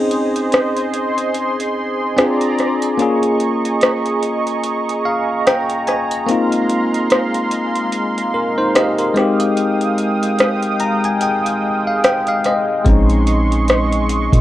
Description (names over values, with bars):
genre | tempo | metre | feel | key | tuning
contemporary R&B | 73 BPM | 4/4 | swing 58% on 16ths | unclear | A4 = 439 Hz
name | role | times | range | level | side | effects
bell-like tine electric piano | accompaniment | 0.0-14.4 s | Ab3 to Bb5 | -18 LUFS | left 2 dB | auto-pan
warm analog pad | sustained chords | 0.0-14.4 s | Ab3 to Eb6 | -20 LUFS | right 2 dB | chorus, tremolo
booming analog drum machine | drums | 0.1-14.4 s | hi-hat, kick drum, rim click | -17 LUFS | equal | overdrive
soft 808-style bass | bass | 12.9-14.4 s | Bb1 to Bb2 | -16 LUFS | equal | none
room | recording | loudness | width
light reverb | worn, warbling old tape, cassette tape, warbly pitch drift | -14 LUFS | side -14 dB against mid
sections
0.0-14.4 A section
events
break 0.0-12.9; tine electric piano fill 4.6-6.3, 10.4-12.9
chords
0.0 Abadd11/C; 2.2 Bb9; 3.0 Eb7sus4; 6.3 Ab69; 12.9 Bbm11